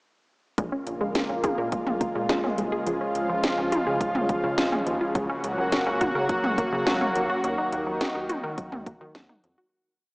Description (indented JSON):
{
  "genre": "synth-pop",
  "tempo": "105 BPM",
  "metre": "4/4",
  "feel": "straight",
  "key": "Bb minor",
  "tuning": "A4 = 440 Hz",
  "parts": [
    { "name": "lush unison pad", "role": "sustained chords", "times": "0.6-9.7 s", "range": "Db3 to Gb4", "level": "-26 LUFS", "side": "equal", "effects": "chorus" },
    { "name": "wide unison pluck", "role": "arpeggios", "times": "0.6-9.7 s", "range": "F3 to Bb4", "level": "-32 LUFS", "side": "equal", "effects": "slapback echo" },
    { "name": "rubbery square bass", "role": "bass", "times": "0.6-9.6 s", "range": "Bb1 to Eb3", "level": "-33 LUFS", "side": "equal", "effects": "none" },
    { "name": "house drum kit", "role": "drums", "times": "0.6-9.6 s", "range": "hi-hat, kick drum, snare drum, toms", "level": "-28 LUFS", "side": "equal", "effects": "none" }
  ],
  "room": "wet plate reverb, RT60 1.8 s",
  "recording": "worn, warbling old tape, cassette tape, warbly pitch drift, small speaker sound",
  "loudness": "-23 LUFS",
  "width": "side -30 dB against mid",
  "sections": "0.6-9.7 verse",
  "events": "fade-out 7.4-9.7",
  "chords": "0.6 Bbm7; 2.9 Db; 5.2 Gb/Db; 7.4 Ebm"
}